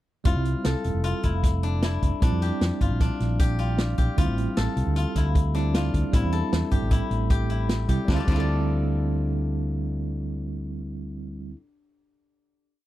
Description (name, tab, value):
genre	progressive instrumental, band music in an uneven meter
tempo	154 BPM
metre	5/4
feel	straight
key	D minor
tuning	A4 = 439 Hz
part	bell-like tine electric piano	accompaniment	0.2-11.6 s	G3 to G5	-31 LUFS	right 4 dB	medium stereo tremolo
part	steel-string zither	arpeggios	0.3-11.7 s	D4 to D5	-32 LUFS	left 5 dB	none
part	mellow fretless electric bass	bass	0.3-11.5 s	E1 to F2	-25 LUFS	equal	none
part	vintage drum kit	drums	0.3-8.4 s	crash cymbal, hi-hat, kick drum, snare drum	-24 LUFS	equal	none
room	little or no reverb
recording	dry, close 1970s-style studio recording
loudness	-22 LUFS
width	side -15 dB against mid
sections	0.3-8.1 groove; 8.1-12.0 final chord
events	tine electric piano fill 3.4-4.2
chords	0.3 Fmaj7; 2.2 Bb6; 4.2 Dm7; 6.1 Am7; 8.1 Dm7